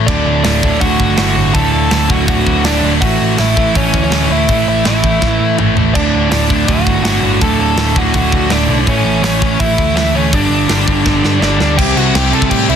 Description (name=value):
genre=punk rock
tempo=164 BPM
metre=4/4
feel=straight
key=D major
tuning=A4 = 441 Hz
part: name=tight distorted guitar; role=riff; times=0.0-12.8 s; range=D2 to C5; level=-19 LUFS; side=left 16 dB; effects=distortion
part: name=hollow-body short-scale picked electric bass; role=bass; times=0.0-12.8 s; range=D1 to C3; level=-18 LUFS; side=equal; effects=none
part: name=bluesy overdriven lead guitar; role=melody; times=0.1-12.8 s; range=C#4 to A5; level=-17 LUFS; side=left 1 dB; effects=distortion
part: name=crunchy overdriven guitar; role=riff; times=0.1-12.8 s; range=D2 to C4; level=-16 LUFS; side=right 11 dB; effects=none
part: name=tight metal drum kit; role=drums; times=0.1-12.8 s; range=crash cymbal, hi-hat, kick drum, snare drum, toms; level=-17 LUFS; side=equal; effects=soft clipping on kick
part: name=fuzz guitar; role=riff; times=11.8-12.8 s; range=C3 to C4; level=-20 LUFS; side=equal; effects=distortion
room=light reverb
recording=dense, heavily limited modern master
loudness=-10 LUFS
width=side -8 dB against mid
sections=0.0-11.8 A section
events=drum fill 5.2-5.9, 11.1-11.8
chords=0.1 D; 3.0 A; 5.9 D; 8.9 A; 10.3 G5; 11.8 C